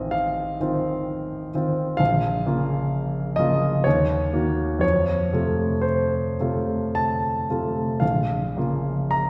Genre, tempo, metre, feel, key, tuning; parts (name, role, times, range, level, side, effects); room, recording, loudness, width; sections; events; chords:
classical, romantic nocturne for solo piano; 50-66 BPM; 3/4; rubato; Bb minor; A4 = 440 Hz
clear grand piano; solo; 0.0-9.3 s; A1 to Bb5; -23 LUFS; equal
wet scoring stage reverb, RT60 1.6 s; heard from further back in the room; -23 LUFS; mono
0.0-9.3 A section
0.0 F7/A; 2.0 Bbm; 3.9 Ebm; 4.8 F; 8.0 Bbm